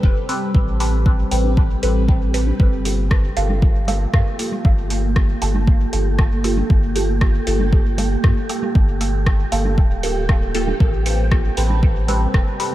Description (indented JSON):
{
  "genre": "dub techno",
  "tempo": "117 BPM",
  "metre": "4/4",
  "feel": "straight",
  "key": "G minor",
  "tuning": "A4 = 440 Hz",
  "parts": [
    { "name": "deep dark ambient pad", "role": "sustained chords", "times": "0.0-12.7 s", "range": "G3 to B4", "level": "-27 LUFS", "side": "right 1 dB", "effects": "chorus, built-in reverb, sidechain pumping" },
    { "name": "soft dub sub bass", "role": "bass", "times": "0.0-12.4 s", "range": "D1 to G2", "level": "-20 LUFS", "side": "equal", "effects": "sidechain pumping" },
    { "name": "electronic kick drum", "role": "drums", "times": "0.0-12.4 s", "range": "none", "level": "-16 LUFS", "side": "equal", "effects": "overdrive" },
    { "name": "wind-like tuned noise texture", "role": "texture", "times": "0.1-12.7 s", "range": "G4", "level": "-35 LUFS", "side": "right 2 dB", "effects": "built-in reverb, ensemble chorus, sidechain pumping" },
    { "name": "filtered dub chord stab", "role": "stabs", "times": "0.3-12.7 s", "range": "Bb3 to B4", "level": "-25 LUFS", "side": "right 1 dB", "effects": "phaser, sidechain pumping, dub echo" },
    { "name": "soft vintage rhythm box", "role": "drums", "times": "0.3-12.7 s", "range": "hi-hat, rim click", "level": "-29 LUFS", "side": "equal", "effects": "dub echo" },
    { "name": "congas", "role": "percussion", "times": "1.4-12.2 s", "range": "none", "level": "-32 LUFS", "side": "right 2 dB", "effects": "none" }
  ],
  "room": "light reverb",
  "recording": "vinyl crackle",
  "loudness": "-15 LUFS",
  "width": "side -15 dB against mid",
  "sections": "0.0-12.7 A section",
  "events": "none",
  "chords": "0.0 Am9; 2.6 Gm9; 10.8 Am9"
}